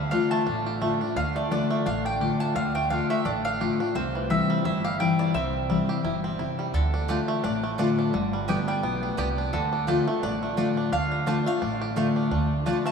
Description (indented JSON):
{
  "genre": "bluegrass",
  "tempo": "172 BPM",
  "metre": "4/4",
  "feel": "swing 56% on 8ths",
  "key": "D dorian",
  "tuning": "A4 = 440 Hz",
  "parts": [
    { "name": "mandolin", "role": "melody", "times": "0.0-12.9 s", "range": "A4 to A5", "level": "-31 LUFS", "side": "right 1 dB", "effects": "none" },
    { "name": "picked steel-string acoustic guitar", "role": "accompaniment", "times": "0.0-12.9 s", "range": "G2 to G4", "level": "-26 LUFS", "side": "left 3 dB", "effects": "none" },
    { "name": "bluegrass banjo", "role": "arpeggios", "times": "0.0-12.9 s", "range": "D3 to G4", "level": "-31 LUFS", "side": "right 3 dB", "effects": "none" },
    { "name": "upright bass", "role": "bass", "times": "0.0-12.7 s", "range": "G1 to D2", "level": "-32 LUFS", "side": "right 2 dB", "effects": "none" },
    { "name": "mandolin", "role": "stabs", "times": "7.1-12.8 s", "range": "A3 to A5", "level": "-35 LUFS", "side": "right 5 dB", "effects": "none" }
  ],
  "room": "wet cathedral reverb, RT60 6.7 s",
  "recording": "in a vast, echoing space",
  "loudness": "-23 LUFS",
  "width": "side -6 dB against mid",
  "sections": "0.0-12.9 A section",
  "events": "none",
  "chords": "0.0 Dm; 4.0 C; 6.7 Dm; 8.1 G; 9.5 Dm",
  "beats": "0.12 0.46 0.81 | 1.16 1.51 1.86 2.21 | 2.56 2.91 3.25 3.60 | 3.95 4.30 4.65 5.00 | 5.35 5.70 6.04 6.39 | 6.74 7.09 7.44 7.79 | 8.13 8.48 8.83 9.18 | 9.53 9.88 10.23 10.57 | 10.92 11.27 11.62 11.97 | 12.32 12.66"
}